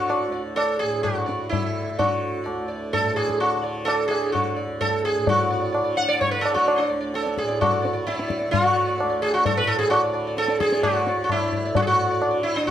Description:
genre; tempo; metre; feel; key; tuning
indian classical, Hindustani; 129 BPM; 7/4; straight; D raga yaman; A4 = 437 Hz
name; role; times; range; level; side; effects
sitar; melody; 0.0-12.7 s; D4 to F#5; -22 LUFS; right 1 dB; plate reverb
tanpura; drone; 0.0-12.7 s; D2 to D3; -30 LUFS; right 2 dB; none
tabla; percussion; 0.1-12.7 s; none; -26 LUFS; left 2 dB; none
room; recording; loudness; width
moderate studio reverb, RT60 0.6 s; none; -20 LUFS; side -10 dB against mid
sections
0.0-5.3 A section; 5.3-12.7 B section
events
speeding up 0.0-12.7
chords
none

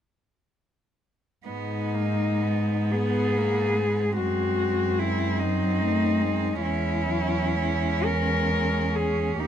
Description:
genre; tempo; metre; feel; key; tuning
classical, lyrical piece for cello ensemble; 40-50 BPM (dotted quarters); 6/8; rubato; G# minor; A4 = 441 Hz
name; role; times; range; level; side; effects
warm cello; melody; 1.5-9.5 s; D#4 to A#4; -27 LUFS; left 5 dB; none
rich cello; second line; 1.5-9.5 s; A#3 to D#4; -31 LUFS; right 9 dB; none
warm cello; accompaniment; 1.5-9.5 s; F#3 to B3; -29 LUFS; left 1 dB; none
rich cello; bass; 1.5-9.5 s; D#2 to G#2; -28 LUFS; right 2 dB; none
room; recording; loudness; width
little or no reverb; close, detailed microphones; -22 LUFS; side -9 dB against mid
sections
1.5-9.5 A section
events
none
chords
1.5 G#m; 4.2 G#7/F#; 6.6 C#m/E

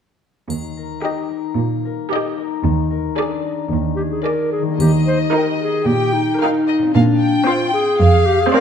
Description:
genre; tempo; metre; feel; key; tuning
cinematic, playful, whimsical film cue; 112 BPM; 4/4; straight; Eb major; A4 = 440 Hz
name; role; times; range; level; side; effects
concert harp; arpeggios; 0.5-8.6 s; Bb2 to Bb4; -24 LUFS; left 7 dB; none
warm chamber cello section; bass; 0.5-8.4 s; Eb2 to Bb2; -18 LUFS; right 3 dB; none
triangle; percussion; 0.5-1.5, 4.8-5.8 s; none; -38 LUFS; left 1 dB; none
rich chamber violin section; melody; 1.0-8.6 s; D5 to G5; -29 LUFS; left 4 dB; none
rich chamber violin section; second line; 1.0-8.6 s; Bb4 to G5; -23 LUFS; left 3 dB; none
rich chamber viola section; accompaniment; 1.0-8.6 s; C4 to C5; -22 LUFS; right 2 dB; none
mellow clarinet; second line; 4.0-8.6 s; D4 to C5; -18 LUFS; left 1 dB; none
room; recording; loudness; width
moderate scoring stage reverb, RT60 1.7 s; dark, warm production; -15 LUFS; side -8 dB against mid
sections
0.5-4.8 A section; 4.8-8.6 B section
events
none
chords
0.5 Eb; 2.6 Bb7/Eb; 4.8 Eb; 6.9 Bb9

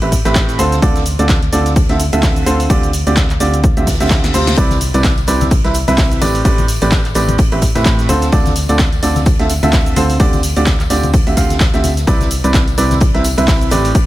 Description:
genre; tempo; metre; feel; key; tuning
piano house; 128 BPM; 4/4; swing 57% on 16ths; C major; A4 = 441 Hz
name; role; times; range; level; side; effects
clear upright piano; riff; 0.0-13.9 s; A2 to F5; -16 LUFS; right 2 dB; sidechain pumping, ping-pong delay
organ-like FM bass; bass; 0.0-13.9 s; A1 to A2; -17 LUFS; equal; sidechain pumping
oversized low-tuned drum kit; drums; 0.0-14.1 s; hi-hat, snare drum; -28 LUFS; right 2 dB; sidechain pumping on hats, high-pass filter on hats, high-pass filter on snare, high-pass filter on room
punchy analog drum machine; drums; 0.0-14.1 s; handclaps, hi-hat, shaker, snare drum; -22 LUFS; equal; none
electronic kick drum; drums; 0.1-14.1 s; none; -14 LUFS; equal; none
reverse cymbal; sound effects; 3.8-4.6 s; none; -26 LUFS; left 5 dB; none
tambourine and congas; percussion; 4.6-14.1 s; none; -25 LUFS; left 4 dB; none
room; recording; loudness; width
small room ambience; none; -11 LUFS; side -15 dB against mid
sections
0.0-14.1 A section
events
reverse cymbal 3.8-4.6; drum fill 4.2-4.6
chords
0.0 Am9; 0.6 Dm7; 2.7 G7sus4/D; 4.6 Cmaj9; 6.2 Am11; 8.1 Dm7; 10.2 G7sus4/D; 12.1 Cmaj9

